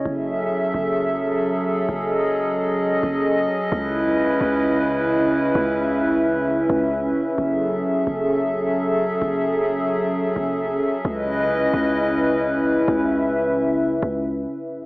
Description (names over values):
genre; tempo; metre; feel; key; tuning
hip hop, atmospheric cloud-rap; 131 BPM; 4/4; half-time; C# minor; A4 = 441 Hz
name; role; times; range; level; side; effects
hollow soft pad; sustained chords; 0.0-14.9 s; F#2 to E5; -19 LUFS; equal; chorus
warm 808-style bass; bass; 0.1-14.5 s; F#1 to C#2; -31 LUFS; equal; none
room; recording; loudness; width
moderate echo chamber reverb, RT60 2.4 s; AM radio sound; -19 LUFS; side -21 dB against mid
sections
0.1-14.7 A section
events
none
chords
0.1 F#m9; 3.7 C#m9; 7.4 F#m9; 11.0 C#m9